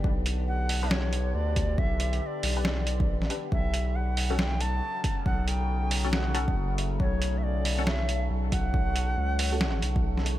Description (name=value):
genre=deep dubstep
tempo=138 BPM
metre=4/4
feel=swing 61% on 16ths, half-time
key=unclear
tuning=A4 = 444 Hz
part: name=overtone-sweeping drone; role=sustained chords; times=0.0-10.4 s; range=C#3 to G4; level=-36 LUFS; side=left 1 dB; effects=chorus, built-in reverb, phaser
part: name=filtered dub chord stab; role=stabs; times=0.0-9.6 s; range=C#4 to B4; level=-38 LUFS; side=left 3 dB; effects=phaser, lush chorus, dub echo
part: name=saturated sub bass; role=bass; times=0.0-10.4 s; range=F#1 to D2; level=-28 LUFS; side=equal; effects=tube saturation
part: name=electronic kick drum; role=drums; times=0.0-10.0 s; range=none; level=-28 LUFS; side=equal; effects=none
part: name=trip hop sampler-style drum kit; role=drums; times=0.3-10.4 s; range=hi-hat, snare drum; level=-31 LUFS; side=right 1 dB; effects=none
part: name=breathy bright ney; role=melody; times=0.5-10.2 s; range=C#5 to A5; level=-34 LUFS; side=equal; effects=dub echo
room=digital ambience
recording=none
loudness=-25 LUFS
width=side -14 dB against mid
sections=0.0-10.4 A section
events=kick drops out 10.0-10.4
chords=0.0 G; 3.5 F#m